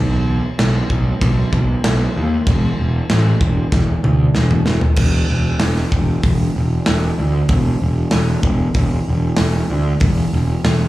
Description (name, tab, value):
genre	hard rock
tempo	95 BPM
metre	4/4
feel	straight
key	unclear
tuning	A4 = 440 Hz
part	fuzz picked electric bass	bass	0.0-10.9 s	E1 to D#2	-16 LUFS	equal	overdrive
part	big rock drum kit	drums	0.6-10.8 s	crash cymbal, hi-hat, kick drum, snare drum, toms	-18 LUFS	equal	none
room	little or no reverb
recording	live gig heard through the venue's PA, club ambience, studio reverb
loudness	-14 LUFS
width	side -16 dB against mid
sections	0.0-5.0 A section; 5.0-10.9 B section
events	drum fill 3.7-5.0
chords	none